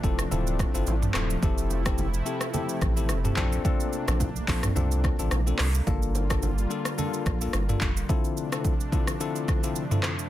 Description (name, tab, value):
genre	afrobeats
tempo	108 BPM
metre	4/4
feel	swing 55% on 16ths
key	D minor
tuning	A4 = 440 Hz
part	bell-like tine electric piano	accompaniment	0.0-10.1 s	D3 to A4	-32 LUFS	left 8 dB	plate reverb
part	warm analog pad	sustained chords	0.0-10.3 s	C3 to F4	-34 LUFS	right 2 dB	chorus
part	warm sub bass	bass	0.0-8.0 s	D1 to C2	-27 LUFS	equal	none
part	deep house drum kit	drums	0.0-10.3 s	handclaps, hi-hat, kick drum, rim click, shaker, toms	-27 LUFS	right 1 dB	soft clipping on snare
part	congas and bongos	percussion	0.3-7.7 s	none	-36 LUFS	right 3 dB	none
room	little or no reverb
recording	dense, heavily limited modern master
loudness	-24 LUFS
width	side -13 dB against mid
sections	0.0-10.3 A section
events	none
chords	0.0 Dm7; 1.4 Fmaj7; 3.4 Bbmaj9; 5.9 Gm7; 8.1 Dm7